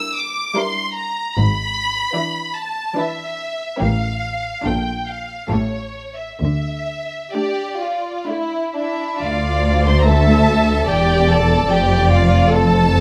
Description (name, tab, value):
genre	classical, slow romantic movement for string orchestra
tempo	63-76 BPM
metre	3/4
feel	rubato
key	D minor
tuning	A4 = 440 Hz
part	rich studio violin section	melody	0.0-13.0 s	C#5 to E6	-26 LUFS	equal	none
part	rich symphonic violin section	second line	0.0-13.0 s	D4 to C5	-24 LUFS	equal	none
part	rich chamber viola section	accompaniment	0.0-13.0 s	E3 to E5	-25 LUFS	equal	none
part	rich studio double bass section	bass	1.4-13.0 s	E1 to D2	-22 LUFS	equal	none
part	warm chamber cello section	bass	1.4-13.0 s	D2 to D3	-21 LUFS	equal	none
room	moderate stone room reverb, RT60 1.1 s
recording	none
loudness	-18 LUFS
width	mono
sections	0.0-9.2 A section; 9.2-13.0 B section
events	none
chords	0.0 Em7b5/G; 1.4 E7/G#; 3.8 A7b9; 4.6 Bbmaj7; 5.5 A7; 6.4 D5; 11.7 Dm/F